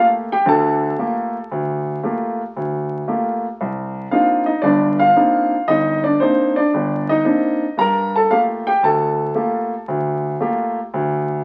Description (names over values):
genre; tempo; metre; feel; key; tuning
solo jazz; 115 BPM; 4/4; swing 69% on 8ths; G minor; A4 = 443 Hz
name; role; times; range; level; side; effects
warm grand piano; solo; 0.0-11.4 s; G1 to Bb5; -18 LUFS; equal; none
room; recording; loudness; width
moderate studio reverb, RT60 0.6 s; very old 78 rpm record, vinyl crackle; -19 LUFS; mono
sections
0.0-11.4 A section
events
none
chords
0.0 Gm9; 3.6 Cm9; 7.8 Gm9